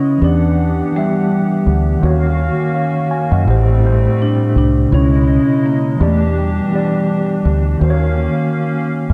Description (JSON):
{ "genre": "hip hop", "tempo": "83 BPM", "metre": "4/4", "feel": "swing 55% on 16ths", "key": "unclear", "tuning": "A4 = 439 Hz", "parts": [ { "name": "vibraphone with soft mallets", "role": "melody", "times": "0.0-7.4 s", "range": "G3 to D4", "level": "-21 LUFS", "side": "equal", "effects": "low-pass filter, tape echo" }, { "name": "mellow tine electric piano", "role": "accompaniment", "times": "0.0-9.1 s", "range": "A2 to G#5", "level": "-19 LUFS", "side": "equal", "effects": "cassette tape, low-pass filter" }, { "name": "hollow soft pad", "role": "sustained chords", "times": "0.0-9.1 s", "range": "B2 to F#5", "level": "-26 LUFS", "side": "equal", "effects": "chorus, low-pass filter" }, { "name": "deep dub fingered electric bass", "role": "bass", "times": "0.2-9.1 s", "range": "A1 to F#2", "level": "-17 LUFS", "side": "equal", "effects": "none" } ], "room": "moderate plate reverb, RT60 2.8 s", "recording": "dark, warm production", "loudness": "-15 LUFS", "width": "mono", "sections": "0.0-9.1 A section", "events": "none", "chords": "0.2 Em7; 2.0 D#m7; 3.5 Am7; 4.9 C#m7; 6.0 Em7; 7.8 D#m7" }